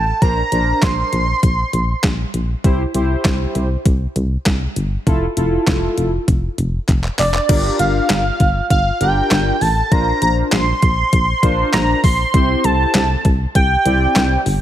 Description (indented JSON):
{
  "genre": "synth-pop",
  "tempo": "99 BPM",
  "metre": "4/4",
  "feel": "straight",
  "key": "G dorian",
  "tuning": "A4 = 441 Hz",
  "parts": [
    { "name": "wide unison lead", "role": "melody", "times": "0.0-2.0, 7.2-14.4 s", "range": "D5 to C6", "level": "-18 LUFS", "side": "right 2 dB", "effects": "tape echo" },
    { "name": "solid FM bass", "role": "bass", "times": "0.0-14.6 s", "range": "F1 to C2", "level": "-18 LUFS", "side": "equal", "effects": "none" },
    { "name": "analog synth brass", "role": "accompaniment", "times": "0.2-14.4 s", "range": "C4 to D5", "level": "-22 LUFS", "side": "left 1 dB", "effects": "chorus" },
    { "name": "detuned 8-bit digital drum machine", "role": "drums", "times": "0.2-14.6 s", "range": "crash cymbal, handclaps, hi-hat, kick drum, snare drum", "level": "-18 LUFS", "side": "equal", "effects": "overdrive" }
  ],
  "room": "light reverb, digital ambience",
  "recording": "none",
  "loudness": "-14 LUFS",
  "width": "side -12 dB against mid",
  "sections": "0.0-7.5 A section; 7.5-14.6 B section",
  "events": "drum fill 6.9-7.5",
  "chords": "0.2 Bbadd9; 2.6 C; 5.1 Fmaj7; 7.5 Gm7; 9.9 Bbadd9; 12.3 C"
}